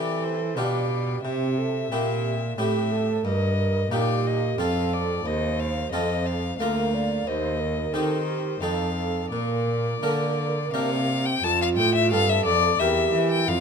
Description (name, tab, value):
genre	classical, baroque-style sonata movement with continuo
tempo	89 BPM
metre	3/4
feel	rubato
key	Bb major from 3.3 s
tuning	A4 = 439 Hz
part	clear violin	melody	0.0-13.6 s	C5 to A5	-28 LUFS	left 8 dB	none
part	mellow hollow concert flute	second line	0.0-13.6 s	F4 to D5	-28 LUFS	right 8 dB	none
part	harpsichord	accompaniment	0.0-13.6 s	D2 to Bb4	-29 LUFS	left 2 dB	none
part	rich cello	bass	0.0-13.6 s	D2 to E3	-27 LUFS	equal	none
room	moderate recital hall reverb, RT60 1.7 s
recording	close, detailed microphones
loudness	-22 LUFS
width	side -6 dB against mid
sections	0.0-11.4 A section; 11.4-13.6 A section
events	none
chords	0.0 C; 0.6 G7/B; 1.2 C; 3.3 Eb/G; 4.6 F; 5.3 F7/Eb; 6.6 Bb/D; 7.3 Cm/Eb; 8.6 F7; 9.3 Bb; 11.4 F; 12.8 C7/E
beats	0.57 | 1.24 1.92 2.58 | 3.25 3.92 4.59 | 5.26 5.93 6.60 | 7.27 7.94 8.62 | 9.32 10.02 10.73 | 11.43 12.12 12.80 | 13.48